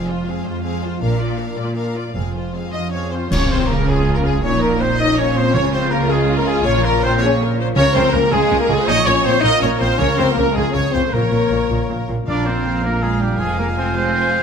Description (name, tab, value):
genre	cinematic, heroic adventure film score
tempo	108 BPM (dotted quarters)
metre	6/8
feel	straight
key	Db major from 3.3 s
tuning	A4 = 440 Hz
part	bright symphonic violin section	melody	0.0-14.4 s	Ab4 to Ab5	-29 LUFS	left 3 dB	none
part	warm symphonic violin section	second line	0.0-14.4 s	F4 to Eb5	-24 LUFS	left 1 dB	none
part	warm symphonic viola section	accompaniment	0.0-14.4 s	F3 to Db5	-26 LUFS	right 1 dB	none
part	concert harp	arpeggios	0.0-14.4 s	F2 to Db6	-27 LUFS	left 8 dB	none
part	rich symphonic cello section	bass	0.0-14.4 s	F2 to D4	-23 LUFS	right 2 dB	none
part	rich symphonic double bass section	bass	0.0-14.4 s	F1 to Db2	-23 LUFS	right 3 dB	none
part	cymbal swell, clash cymbals and concert bass drum	percussion	1.0-4.0 s	none	-24 LUFS	equal	none
part	mellow French horn section	sustained chords	2.7-14.4 s	Ab3 to F4	-22 LUFS	left 4 dB	none
part	clear trumpet	stabs	2.7-14.4 s	G4 to Eb5	-23 LUFS	right 2 dB	none
part	timpani	percussion	3.3-12.8 s	Bb2 to Db3	-26 LUFS	right 1 dB	none
part	bright concert flute	second line	12.3-14.4 s	Ab5 to Bb5	-30 LUFS	equal	none
part	mellow cor anglais	second line	12.3-14.4 s	F5	-27 LUFS	equal	none
part	warm trombone section	sustained chords	12.3-14.4 s	F2 to F3	-28 LUFS	right 5 dB	none
room	moderate scoring stage reverb, RT60 1.5 s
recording	none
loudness	-15 LUFS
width	side -6 dB against mid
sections	0.0-3.3 A section; 3.3-12.3 B section; 12.3-14.4 C section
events	band accent 3.3-3.7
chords	0.0 Fm; 1.0 Bb; 2.2 Fm; 3.3 Db; 4.4 Bbm; 5.5 Db; 6.7 Bbm; 7.8 Db; 8.9 Bbm; 10.0 Db; 11.1 Bbm; 12.3 Bb; 13.4 Fm